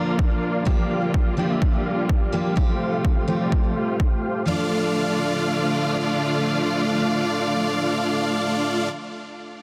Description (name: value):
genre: EDM, festival progressive house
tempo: 126 BPM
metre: 4/4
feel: straight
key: D minor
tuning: A4 = 439 Hz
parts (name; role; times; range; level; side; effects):
- picked steel-string acoustic guitar; accompaniment; 0.0-8.9 s; F3 to Bb4; -30 LUFS; equal; sidechain pumping, delay
- clear studio string section; sustained chords; 0.0-8.9 s; C3 to F4; -32 LUFS; equal; sidechain pumping, low-pass filter
- dense compressed supersaw; riff; 0.0-8.9 s; A3 to G5; -26 LUFS; equal; sidechain pumping, low-pass filter, delay
- electronic hi-hat; drums; 0.1-4.5 s; none; barely audible; none; none
- electronic kick drum; drums; 0.2-4.1 s; none; -23 LUFS; equal; none
room: light reverb, digital ambience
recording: dense, heavily limited modern master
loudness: -22 LUFS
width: mono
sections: 0.0-4.5 A section; 4.5-8.3 B section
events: filter sweep on supersaw synth 0.0-4.5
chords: 0.0 Bb; 0.7 Gm7; 2.6 Fadd9; 4.5 Dm